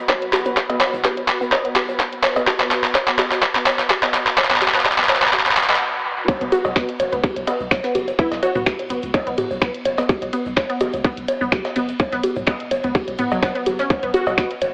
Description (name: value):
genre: minimal techno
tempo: 126 BPM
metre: 4/4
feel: swing 54% on 16ths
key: unclear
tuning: A4 = 440 Hz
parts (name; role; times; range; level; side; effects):
- granular cloud pad; texture; 0.0-5.8 s; F#4 to B5; -32 LUFS; equal; built-in reverb, sidechain pumping
- resonant blip pluck; riff; 0.1-14.5 s; F#3 to C#4; -29 LUFS; equal; phaser, sidechain pumping, tape echo
- electronic kick drum; drums; 0.1-14.5 s; none; -22 LUFS; equal; overdrive, high-pass filter on kick, small room ambience
- garage drum kit; drums; 0.1-14.7 s; finger snaps, handclaps, hi-hat; -22 LUFS; equal; overdrive, high-pass filter on hats, small room ambience, high-pass filter on snare, dub echo
- egg shaker; percussion; 0.1-14.7 s; none; -53 LUFS; equal; none
- electronic bongos, cowbell and toms; percussion; 0.1-14.7 s; none; -26 LUFS; equal; small room ambience, dub echo
- soft brush drum kit; drums; 6.3-14.7 s; ride cymbal, snare drum; -37 LUFS; equal; high-pass filter on cymbals, small room ambience, high-pass filter on snare, high-pass filter on room, dub echo
- punchy sub bass; bass; 6.4-14.7 s; F#1 to C#2; -37 LUFS; equal; sidechain pumping
- plucky unison lead; melody; 6.5-8.6, 14.1-14.5 s; E4 to F#4; -28 LUFS; equal; dub echo
room: moderate echo chamber reverb, RT60 2.2 s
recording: echo-heavy mix, high-pass filter, AM radio sound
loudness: -20 LUFS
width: mono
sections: 0.0-6.3 A section; 6.3-14.7 B section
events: build-up 0.0-6.3; drum fill 0.0-5.8; filter sweep on synth pluck 0.0-6.3; stop 5.8-6.3; drop 6.3-14.7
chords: 0.0 B5